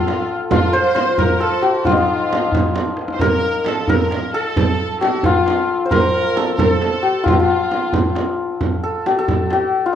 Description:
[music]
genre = Persian modal ensemble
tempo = 89 BPM (dotted quarters)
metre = 6/8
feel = straight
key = F dastgah homayun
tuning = A4 = 440 Hz
[part]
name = santur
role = melody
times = 0.0-10.0 s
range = Eb4 to C5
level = -18 LUFS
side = left 3 dB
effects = none
[part]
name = warm studio violin section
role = second line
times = 0.0-8.1 s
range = F4 to C5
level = -23 LUFS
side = right 1 dB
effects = none
[part]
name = frame drum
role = percussion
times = 0.1-9.6 s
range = none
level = -22 LUFS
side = right 6 dB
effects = none
[part]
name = tombak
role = percussion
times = 0.1-9.8 s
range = none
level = -22 LUFS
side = left 1 dB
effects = none
[sound]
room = light reverb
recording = dry, close 1970s-style studio recording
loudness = -15 LUFS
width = side -9 dB against mid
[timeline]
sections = 0.0-8.6 A section; 8.6-10.0 B section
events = drum fill 2.8-3.2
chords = none

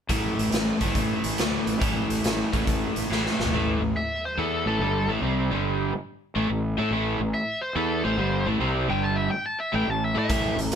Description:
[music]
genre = blues rock power trio and southern rock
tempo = 142 BPM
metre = 4/4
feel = swing 67% on 8ths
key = A minor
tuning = A4 = 436 Hz
[part]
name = overdriven electric guitar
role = riff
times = 0.1-10.7 s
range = G2 to A4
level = -26 LUFS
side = equal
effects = none
[part]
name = fuzz fingered electric bass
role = bass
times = 0.1-10.7 s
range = G1 to A2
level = -28 LUFS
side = equal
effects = overdrive
[part]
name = raw garage drum kit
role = drums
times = 0.1-3.5, 10.3-10.8 s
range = hi-hat, kick drum, snare drum, toms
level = -27 LUFS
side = equal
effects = none
[part]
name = biting lead guitar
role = melody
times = 4.0-10.6 s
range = A4 to A5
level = -28 LUFS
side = left 1 dB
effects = overdrive
[sound]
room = moderate studio reverb, RT60 0.7 s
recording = band playing live in one room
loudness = -23 LUFS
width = side -8 dB against mid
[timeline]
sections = 0.1-3.5 A section; 3.5-10.8 B section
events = drum fill 3.1-3.5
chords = 0.1 A5; 3.5 Am; 5.4 G5; 5.9 Am; 8.8 G5; 9.2 A5

